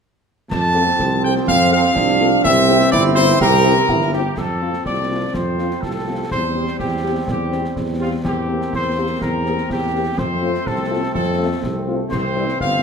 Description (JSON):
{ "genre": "military-style march for wind band", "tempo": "124 BPM", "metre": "2/4", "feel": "straight", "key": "F major", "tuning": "A4 = 440 Hz", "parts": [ { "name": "bright trumpet section", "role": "melody", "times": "0.5-12.8 s", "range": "F4 to A5", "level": "-19 LUFS", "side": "left 1 dB", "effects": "none" }, { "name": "warm trombone section", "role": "sustained chords", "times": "0.5-12.8 s", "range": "E3 to C4", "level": "-25 LUFS", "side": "right 1 dB", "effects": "none" }, { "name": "mellow tuba", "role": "bass", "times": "0.5-12.8 s", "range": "G1 to F2", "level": "-22 LUFS", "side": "right 2 dB", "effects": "none" }, { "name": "concert snare drum, clash cymbals and concert bass drum", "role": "drums", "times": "0.5-12.8 s", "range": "none", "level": "-28 LUFS", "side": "left 1 dB", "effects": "none" }, { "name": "mellow French horn section", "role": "accompaniment", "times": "0.8-12.4 s", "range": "G3 to A4", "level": "-27 LUFS", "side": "left 4 dB", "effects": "none" }, { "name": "clear euphonium", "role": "second line", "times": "1.0-4.1 s", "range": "C4 to G4", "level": "-19 LUFS", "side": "right 2 dB", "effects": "none" } ], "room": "wet large studio reverb, RT60 1.4 s", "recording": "none", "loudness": "-16 LUFS", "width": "side -6 dB against mid", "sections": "0.5-4.4 A section; 4.4-12.8 B section", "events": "none", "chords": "0.5 F; 2.4 C7; 4.4 F; 6.3 C/E; 8.2 C7/E; 10.2 F; 12.1 C", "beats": "| 0.51 0.99 | 1.48 1.96 | 2.44 2.93 | 3.41 3.89 | 4.38 4.86 | 5.34 5.83 | 6.31 6.79 | 7.28 7.76 | 8.24 8.73 | 9.21 9.70 | 10.18 10.66 | 11.15 11.63 | 12.12 12.60" }